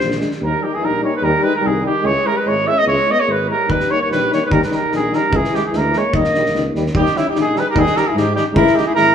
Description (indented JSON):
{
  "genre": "balkan folk, Balkan brass band",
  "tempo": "148 BPM",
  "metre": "2/4",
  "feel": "straight",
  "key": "Eb phrygian dominant",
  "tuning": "A4 = 440 Hz",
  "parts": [
    { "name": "warm trumpet", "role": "melody", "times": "0.0-9.1 s", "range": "Fb4 to Fb5", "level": "-17 LUFS", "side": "right 2 dB", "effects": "none" },
    { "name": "warm alto saxophone", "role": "second line", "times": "0.0-9.1 s", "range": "Eb3 to Ab4", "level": "-22 LUFS", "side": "left 4 dB", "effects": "none" },
    { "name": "mellow tuba", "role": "bass", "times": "0.0-9.1 s", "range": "Ab1 to Ab2", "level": "-23 LUFS", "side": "equal", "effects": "none" },
    { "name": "loose indie drum kit", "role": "percussion", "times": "0.0-0.4, 3.7-9.0 s", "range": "kick drum, snare drum", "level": "-23 LUFS", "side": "equal", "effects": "none" },
    { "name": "clear euphonium", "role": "accompaniment", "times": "0.2-9.0 s", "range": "G3 to Ab3", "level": "-25 LUFS", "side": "right 4 dB", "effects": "none" },
    { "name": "dark French horn", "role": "accompaniment", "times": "0.2-9.0 s", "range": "D4 to Fb4", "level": "-23 LUFS", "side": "left 5 dB", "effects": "none" }
  ],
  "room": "wet large studio reverb, RT60 1.4 s",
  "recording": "band playing live in one room",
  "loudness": "-14 LUFS",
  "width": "side -8 dB against mid",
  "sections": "0.4-6.9 A section; 6.9-9.1 A section",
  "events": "none",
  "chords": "0.0 Bb7; 0.4 Eb; 2.1 Dbm; 3.7 Eb; 5.3 Dbm; 6.1 Eb; 8.6 Dbm"
}